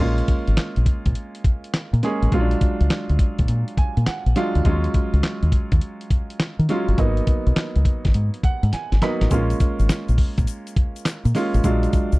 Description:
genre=R&B, new jack swing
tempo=103 BPM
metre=4/4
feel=swing 67% on 16ths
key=unclear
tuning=A4 = 441 Hz
part: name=clear baby grand piano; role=accompaniment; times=0.0-12.2 s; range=F#3 to B5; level=-25 LUFS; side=right 1 dB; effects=none
part: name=deep dub fingered electric bass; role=bass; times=0.0-12.2 s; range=G1 to D#3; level=-19 LUFS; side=equal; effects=none
part: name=dusty soul sampler-style drum kit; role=drums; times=0.2-12.2 s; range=handclaps, hi-hat, kick drum, snare drum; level=-20 LUFS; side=equal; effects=none
part: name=egg shaker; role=percussion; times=9.3-12.2 s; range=none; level=-43 LUFS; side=left 16 dB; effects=none
room=little or no reverb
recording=dry, close 1970s-style studio recording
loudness=-18 LUFS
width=side -21 dB against mid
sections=0.0-12.2 A section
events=grand piano fill 3.5-4.6, 8.1-9.3; drum fill 8.7-9.3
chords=0.0 A#m7; 2.3 A#7b13; 4.6 D#m11; 7.0 G#m9; 9.3 A#m7; 11.6 A#7b13

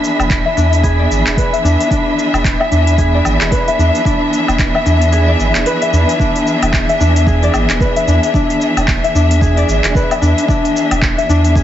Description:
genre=organic downtempo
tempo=112 BPM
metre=4/4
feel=swing 59% on 16ths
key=unclear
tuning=A4 = 439 Hz
part: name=rich studio string section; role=sustained chords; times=0.0-11.6 s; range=E3 to E5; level=-18 LUFS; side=equal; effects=sidechain pumping, shimmer reverb
part: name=concert harp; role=arpeggios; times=0.0-11.6 s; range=D4 to E5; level=-16 LUFS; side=left 2 dB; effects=digital delay, shimmer reverb
part: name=organic electronic drum kit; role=drums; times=0.0-11.6 s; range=handclaps, hi-hat, shaker, woodblock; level=-21 LUFS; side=equal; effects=none
part: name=wind-like tuned noise texture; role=texture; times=0.0-6.2 s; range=B5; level=-26 LUFS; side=right 7 dB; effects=built-in reverb, shimmer reverb
part: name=warm sub bass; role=bass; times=0.2-11.6 s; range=D1 to E2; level=-14 LUFS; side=right 1 dB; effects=none
part: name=electronic kick drum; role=drums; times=0.3-11.6 s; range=none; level=-17 LUFS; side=right 1 dB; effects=none
room=light reverb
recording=heavily compressed radio sound, multiband compression, nothing above 7.8 kHz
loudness=-11 LUFS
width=side -11 dB against mid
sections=0.0-6.2 A section; 6.2-11.6 B section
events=kick drops out 5.1-6.2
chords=0.0 E7

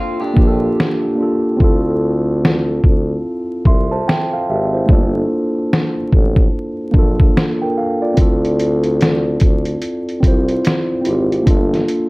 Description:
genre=lo-fi hip hop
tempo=73 BPM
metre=4/4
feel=swing 61% on 16ths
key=D minor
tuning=A4 = 439 Hz
part: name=electric guitar at the edge of break-up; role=second line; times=0.0-1.4 s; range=C4 to G4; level=-26 LUFS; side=equal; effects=low-pass filter, analog delay
part: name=mellow tine electric piano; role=accompaniment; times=0.0-12.1 s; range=A3 to C6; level=-17 LUFS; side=equal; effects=cassette tape, low-pass filter
part: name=warm tuba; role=bass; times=0.4-11.8 s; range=G1 to D2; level=-20 LUFS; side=left 1 dB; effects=none
part: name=lo-fi sampler-style drum kit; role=drums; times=0.4-12.1 s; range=hi-hat, kick drum, snare drum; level=-14 LUFS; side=equal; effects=none
room=light reverb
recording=dark, warm production, vinyl crackle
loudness=-13 LUFS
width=side -24 dB against mid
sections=0.0-12.1 A section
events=break 0.0-8.2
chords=0.0 Gm7; 1.6 Dm9; 4.9 Gm7; 8.2 Dm9; 11.5 Gm7

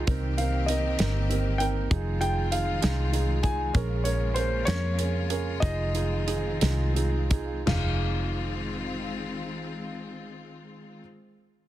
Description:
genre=six-eight pop ballad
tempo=55-65 BPM (dotted quarters)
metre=6/8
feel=straight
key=F minor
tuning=A4 = 440 Hz
part: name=felt-muted upright piano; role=accompaniment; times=0.0-11.0 s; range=C4 to Bb4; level=-33 LUFS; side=right 6 dB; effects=none
part: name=rich studio string section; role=sustained chords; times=0.0-11.0 s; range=Db3 to G4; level=-35 LUFS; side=left 3 dB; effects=none
part: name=vintage muted fingered electric bass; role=bass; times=0.0-11.0 s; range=F1 to F2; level=-28 LUFS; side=equal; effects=none
part: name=damped 70s drum kit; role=drums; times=0.1-7.8 s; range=crash cymbal, hi-hat, kick drum, snare drum, toms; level=-28 LUFS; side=equal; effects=none
part: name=dark grand piano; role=melody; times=0.4-11.0 s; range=C5 to Ab5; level=-32 LUFS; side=left 1 dB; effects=none
room=little or no reverb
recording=dense, heavily limited modern master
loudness=-24 LUFS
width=side -14 dB against mid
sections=0.0-7.7 A section; 7.7-11.7 B section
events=slowing down 3.7-7.7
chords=0.1 Cm7; 1.9 Fm7; 3.7 Bbm7; 5.6 Fm7

